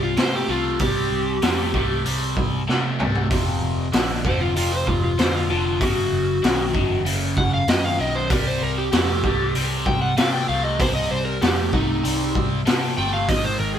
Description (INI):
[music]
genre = blues rock power trio and southern rock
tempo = 96 BPM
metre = 4/4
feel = straight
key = C minor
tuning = A4 = 440 Hz
[part]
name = overdriven slide guitar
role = melody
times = 0.0-13.8 s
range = Eb4 to G5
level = -24 LUFS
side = left 1 dB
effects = none
[part]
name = crunchy overdriven guitar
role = riff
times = 0.0-13.8 s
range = F2 to A3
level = -25 LUFS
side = equal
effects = phaser
[part]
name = vintage muted picked electric bass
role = bass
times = 0.0-13.8 s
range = F1 to C3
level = -26 LUFS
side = equal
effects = none
[part]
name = raw garage drum kit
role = drums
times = 0.2-13.4 s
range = hi-hat, kick drum, snare drum, toms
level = -23 LUFS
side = equal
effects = none
[sound]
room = light reverb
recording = band playing live in one room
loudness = -19 LUFS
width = side -9 dB against mid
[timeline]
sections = 0.0-13.8 A section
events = electric slide guitar solo 0.0-13.8; drum fill 2.7-3.3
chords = 0.0 C5; 3.3 F5; 5.8 F#5; 8.3 C5